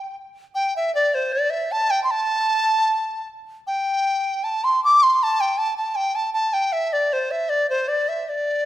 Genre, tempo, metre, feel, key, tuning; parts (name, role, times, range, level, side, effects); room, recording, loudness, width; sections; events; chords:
chinese traditional; 78 BPM; 2/4; rubato; D shang mode; A4 = 440 Hz
large dizi; solo; 0.0-8.7 s; C5 to D6; -19 LUFS; equal
wet recital hall reverb, RT60 1.7 s; -19 LUFS; side -13 dB against mid
0.0-8.7 A section